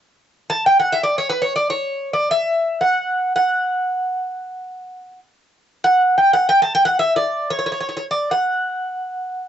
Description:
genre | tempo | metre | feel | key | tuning
Turkish makam ensemble | free time | none | none | unclear | A4 = 442 Hz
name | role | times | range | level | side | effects
Greek bouzouki | solo | 0.5-9.5 s | B4 to A5 | -17 LUFS | equal | cassette tape
room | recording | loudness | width
light reverb | home recording on cassette, nothing above 8.0 kHz | -16 LUFS | side -10 dB against mid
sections
0.1-9.5 A section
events
none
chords
none

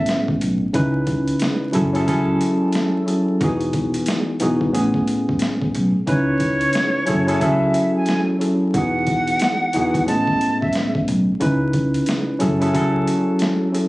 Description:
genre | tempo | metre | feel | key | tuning
hip hop, boom-bap hip-hop | 90 BPM | 4/4 | swing 60% on 16ths | unclear | A4 = 440 Hz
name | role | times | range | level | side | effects
breathy concert flute | melody | 0.0-0.2, 6.1-10.9 s | C#5 to A5 | -21 LUFS | right 1 dB | slapback echo
tine electric piano | accompaniment | 0.0-13.9 s | A2 to B4 | -19 LUFS | equal | medium stereo tremolo, cassette tape
boom bap sampler-style drum kit | drums | 0.1-13.9 s | hi-hat, kick drum, snare drum | -25 LUFS | equal | overdrive
upright bass | bass | 0.4-13.0 s | E1 to C#2 | -23 LUFS | equal | none
room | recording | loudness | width
moderate studio reverb, RT60 0.5 s | recorded on a phone in the room, studio reverb, vinyl crackle, compression | -17 LUFS | side -19 dB against mid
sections
0.0-13.9 A section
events
none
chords
0.0 Amaj9; 0.7 C#m9; 1.7 F#m7; 3.4 Emaj9; 4.7 Amaj9; 6.1 C#m9; 7.1 F#m7; 8.7 Emaj9; 10.1 Amaj9; 11.4 C#m9; 12.4 F#m7

